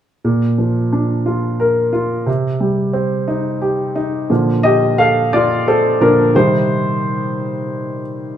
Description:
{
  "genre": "pop",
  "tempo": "59 BPM (dotted quarters)",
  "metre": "6/8",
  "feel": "straight",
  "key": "Bb major",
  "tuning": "A4 = 440 Hz",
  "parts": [
    { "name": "warm grand piano", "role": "accompaniment", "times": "0.2-8.4 s", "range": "Bb2 to F5", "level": "-14 LUFS", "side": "equal", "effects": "none" }
  ],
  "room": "moderate large studio reverb, RT60 1.1 s",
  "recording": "band playing live in one room",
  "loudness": "-14 LUFS",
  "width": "side -10 dB against mid",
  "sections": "0.2-4.3 A section; 4.3-8.4 B section",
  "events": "grand piano solo 4.3-8.4",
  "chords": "0.2 Bb; 2.3 Cm; 4.3 Bb; 6.3 Cm"
}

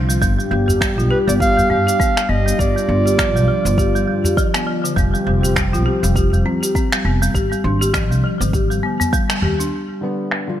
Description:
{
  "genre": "organic downtempo",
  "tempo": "101 BPM",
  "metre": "4/4",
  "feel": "swing 57% on 16ths",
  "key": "unclear",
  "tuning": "A4 = 438 Hz",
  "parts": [
    { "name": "warm analog pad", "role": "sustained chords", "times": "0.0-10.6 s", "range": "F3 to G4", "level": "-25 LUFS", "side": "equal", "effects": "chorus, vintage 12-bit sampler grit, sidechain pumping" },
    { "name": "upright bass", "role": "bass", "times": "0.0-9.7 s", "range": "F1 to G2", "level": "-19 LUFS", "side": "equal", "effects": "none" },
    { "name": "folk marimba with hard mallets", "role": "arpeggios", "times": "0.1-9.7 s", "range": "D3 to G4", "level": "-20 LUFS", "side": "left 1 dB", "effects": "digital delay" },
    { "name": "electronic shaker and finger snaps", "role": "drums", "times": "0.1-10.5 s", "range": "none", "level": "-24 LUFS", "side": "equal", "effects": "low-pass filter on perc, low-pass filter on snare, low-pass filter on room" },
    { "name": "electronic kick drum", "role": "drums", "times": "0.2-9.3 s", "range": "none", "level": "-20 LUFS", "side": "equal", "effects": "none" },
    { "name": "udu", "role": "percussion", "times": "0.7-9.6 s", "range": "none", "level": "-23 LUFS", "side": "equal", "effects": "none" },
    { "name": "warm clarinet", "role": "melody", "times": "1.1-4.7 s", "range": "B4 to F5", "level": "-20 LUFS", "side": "right 2 dB", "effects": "digital delay" },
    { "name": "felt-muted upright piano", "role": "accompaniment", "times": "10.0-10.6 s", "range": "D3 to F4", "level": "-23 LUFS", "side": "left 1 dB", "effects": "sidechain pumping, digital delay" }
  ],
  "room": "light reverb, small room ambience",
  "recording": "none",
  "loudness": "-15 LUFS",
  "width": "side -11 dB against mid",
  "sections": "0.0-9.7 A section",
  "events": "band accent 9.3",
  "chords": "0.2 G; 5.0 F5; 7.3 N.C.; 9.7 G"
}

